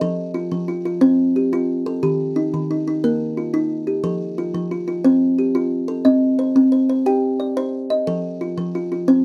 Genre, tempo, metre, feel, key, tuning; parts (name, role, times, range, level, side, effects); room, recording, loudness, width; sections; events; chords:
southern african traditional; 119 BPM (dotted quarters); 12/8; straight; F mixolydian; A4 = 441 Hz
kalimba; solo; 0.0-9.2 s; Eb3 to G5; -20 LUFS; equal
little or no reverb; close, detailed microphones; -20 LUFS; mono
0.0-9.2 A section
0.0 F; 2.0 Eb; 4.0 F; 6.1 Cm; 8.1 F